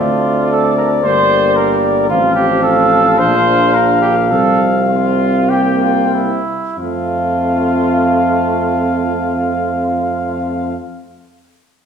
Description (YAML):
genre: classical, brass quintet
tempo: 90-114 BPM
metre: 4/4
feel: rubato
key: F major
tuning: A4 = 439 Hz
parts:
  - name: mellow trumpet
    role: melody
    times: 0.0-10.8 s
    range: D5 to G5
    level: -17 LUFS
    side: left 4 dB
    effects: none
  - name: warm flugelhorn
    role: second line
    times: 0.0-10.8 s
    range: E4 to C5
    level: -17 LUFS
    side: right 3 dB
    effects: none
  - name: clear trombone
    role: accompaniment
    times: 0.0-10.8 s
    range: F3 to Bb3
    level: -22 LUFS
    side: right 1 dB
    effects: none
  - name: mellow French horn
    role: accompaniment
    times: 0.0-10.8 s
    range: Bb3 to D4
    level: -22 LUFS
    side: left 3 dB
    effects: none
  - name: warm tuba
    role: bass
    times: 0.0-10.8 s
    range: G1 to F2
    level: -18 LUFS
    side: right 3 dB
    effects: none
room: wet recital hall reverb, RT60 1.4 s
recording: recorded in a church or concert hall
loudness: -12 LUFS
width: side -7 dB against mid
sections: 0.0-6.8 A section; 6.8-11.9 B section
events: slowing down 1.0-6.8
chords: 0.0 Dm7; 1.0 Gm; 2.1 F/A; 3.2 Bb; 4.3 F5/C; 5.5 C7; 6.8 F